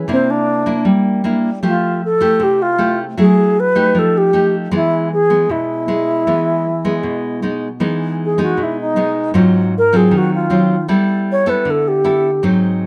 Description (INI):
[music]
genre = bossa nova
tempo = 155 BPM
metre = 4/4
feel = straight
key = unclear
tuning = A4 = 440 Hz
[part]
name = nylon-string guitar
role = accompaniment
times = 0.0-12.9 s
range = G#2 to A4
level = -18 LUFS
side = equal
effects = none
[part]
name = alto flute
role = melody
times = 0.1-12.4 s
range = C4 to C#5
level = -17 LUFS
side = equal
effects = none
[sound]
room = moderate studio reverb, RT60 0.7 s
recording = none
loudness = -15 LUFS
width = mono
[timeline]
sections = 0.0-7.8 A section; 7.8-12.9 B section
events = alto flute solo 7.8-12.9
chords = 0.1 C9; 1.6 Fmaj9; 3.2 F#m9; 3.9 F9; 4.7 E; 7.8 Emaj7; 9.3 G#6; 10.9 G69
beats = | 0.08 0.47 0.86 1.24 | 1.63 2.01 2.40 2.79 | 3.17 3.56 3.95 4.33 | 4.72 5.10 5.49 5.88 | 6.26 6.65 7.04 7.42 | 7.81 8.19 8.58 8.96 | 9.35 9.73 10.12 10.51 | 10.89 11.28 11.66 12.04 | 12.43 12.81